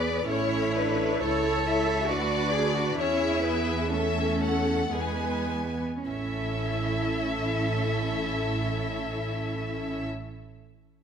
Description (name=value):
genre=classical, slow romantic movement for string orchestra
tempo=50-72 BPM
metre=3/4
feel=rubato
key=A major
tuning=A4 = 440 Hz
part: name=rich chamber violin section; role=melody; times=0.0-10.1 s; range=B4 to G#5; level=-34 LUFS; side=left 4 dB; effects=none
part: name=rich chamber violin section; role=second line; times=0.0-10.0 s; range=G#4 to E5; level=-32 LUFS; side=left 6 dB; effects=none
part: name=warm chamber viola section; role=accompaniment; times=0.0-10.0 s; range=G#3 to B4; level=-31 LUFS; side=equal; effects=none
part: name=rich chamber cello section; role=bass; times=0.0-10.0 s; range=B3 to B4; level=-31 LUFS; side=right 3 dB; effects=none
part: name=rich studio double bass section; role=bass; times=0.0-10.0 s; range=A1 to E2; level=-32 LUFS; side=right 3 dB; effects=none
room=moderate scoring stage reverb, RT60 1.6 s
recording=none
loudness=-25 LUFS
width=side -7 dB against mid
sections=0.0-6.1 A section; 6.1-9.3 B section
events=slowing down 0.0-6.1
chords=0.3 A; 2.1 Bm/D; 3.0 A/E; 4.9 E; 6.1 A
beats=| 0.28 1.23 2.11 | 2.99 3.91 4.93 | 6.07 7.16 8.21